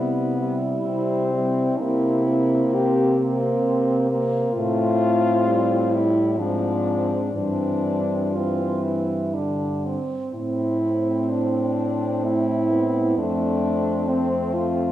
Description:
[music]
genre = classical, lyrical piece for horn quartet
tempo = 59-67 BPM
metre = 3/4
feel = rubato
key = C major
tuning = A4 = 438 Hz
[part]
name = mellow French horn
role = melody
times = 0.0-14.9 s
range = B3 to G4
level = -23 LUFS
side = left 2 dB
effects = none
[part]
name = warm French horn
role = second line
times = 0.0-14.9 s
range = A3 to F4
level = -27 LUFS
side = right 4 dB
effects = none
[part]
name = mellow French horn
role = accompaniment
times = 0.0-14.9 s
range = D3 to C4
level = -26 LUFS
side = left 1 dB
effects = none
[part]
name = dark French horn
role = bass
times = 0.0-14.9 s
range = F2 to C3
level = -26 LUFS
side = right 1 dB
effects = none
[sound]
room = wet recital hall reverb, RT60 1.5 s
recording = heard from further back in the room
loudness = -20 LUFS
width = side -12 dB against mid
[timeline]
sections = 0.0-14.9 A section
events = none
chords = 0.0 C; 1.8 C7; 4.5 F/A; 6.4 Fm/Ab; 7.3 C/G; 9.3 G5; 10.3 Am; 13.2 Dm7/F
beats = 0.86 | 1.79 2.73 3.65 | 4.55 5.46 6.38 | 7.34 8.34 9.35 | 10.33 11.28 12.23 | 13.17 14.08

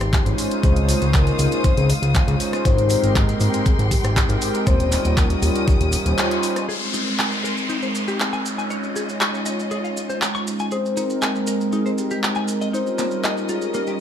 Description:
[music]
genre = nu-disco, nu disco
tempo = 119 BPM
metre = 4/4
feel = straight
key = Ab major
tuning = A4 = 442 Hz
[part]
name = soft octave-layered synth lead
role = melody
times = 0.0-6.4, 10.7-14.0 s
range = G4 to F5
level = -27 LUFS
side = left 4 dB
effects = chorus, tape echo
[part]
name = rich chamber string section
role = sustained chords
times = 0.0-14.0 s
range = Ab3 to Eb6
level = -31 LUFS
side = left 1 dB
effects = sidechain pumping
[part]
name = fat analog bass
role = bass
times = 0.0-6.1 s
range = Eb1 to Db2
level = -20 LUFS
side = equal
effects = none
[part]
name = pop drum kit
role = drums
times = 0.0-13.3 s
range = handclaps, hi-hat, rim click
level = -26 LUFS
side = equal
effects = overdrive
[part]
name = maracas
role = percussion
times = 0.0-14.0 s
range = none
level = -34 LUFS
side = right 3 dB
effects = none
[part]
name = warm analog pad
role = accompaniment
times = 0.1-14.0 s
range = G3 to C5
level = -24 LUFS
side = right 1 dB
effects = chorus, sidechain pumping, tape echo
[part]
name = electronic kick drum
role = drums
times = 0.1-5.8 s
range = none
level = -19 LUFS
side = equal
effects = none
[part]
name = direct-recorded clean electric guitar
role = riff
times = 6.7-13.9 s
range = Bb3 to Db6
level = -29 LUFS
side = left 3 dB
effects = analog chorus, low-pass filter, tape echo
[part]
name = downlifter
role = sound effects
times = 6.7-10.7 s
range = none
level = -28 LUFS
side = left 1 dB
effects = none
[sound]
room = light reverb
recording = small room reverb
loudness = -18 LUFS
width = side -9 dB against mid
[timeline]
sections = 0.0-6.7 A section; 6.7-14.0 B section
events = break 6.2-6.7; band accent 6.2; filter sweep on analog synth pad 6.7-14.0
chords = 0.4 Dbmaj9; 2.7 Abmaj7; 4.7 Eb7; 6.7 Ab; 8.4 Dbadd9; 10.7 Abmaj7; 12.7 Eb7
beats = 0.13 | 0.63 1.14 1.64 2.15 | 2.65 3.15 3.66 4.16 | 4.67 5.17 5.68 6.18 | 6.68 7.19 7.69 8.20 | 8.70 9.21 9.71 10.21 | 10.72 11.22 11.73 12.23 | 12.73 13.24 13.74

